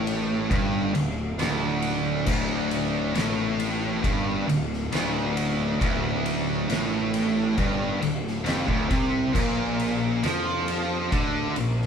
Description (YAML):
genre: stoner and doom metal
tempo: 68 BPM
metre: 4/4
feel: straight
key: D minor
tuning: A4 = 440 Hz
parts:
  - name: fuzz guitar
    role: riff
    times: 0.0-11.9 s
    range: D2 to F3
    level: -28 LUFS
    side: right 1 dB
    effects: distortion
  - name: heavy high-gain guitar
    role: riff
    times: 0.0-11.9 s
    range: D2 to F3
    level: -27 LUFS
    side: right 1 dB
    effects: distortion
  - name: fuzz picked electric bass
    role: bass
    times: 0.0-11.9 s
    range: D1 to F2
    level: -32 LUFS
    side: equal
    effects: overdrive
  - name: oversized low-tuned drum kit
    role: drums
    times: 0.1-11.9 s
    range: crash cymbal, kick drum, ride cymbal, snare drum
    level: -29 LUFS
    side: left 1 dB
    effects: none
room: moderate studio reverb, RT60 0.7 s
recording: band playing live in one room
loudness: -23 LUFS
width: side -7 dB against mid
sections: 0.0-11.9 A section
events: none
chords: 0.0 D5; 9.4 Bb5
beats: 0.52 1.40 | 2.28 3.16 4.04 4.93 | 5.81 6.69 7.58 8.46 | 9.35 10.24 11.12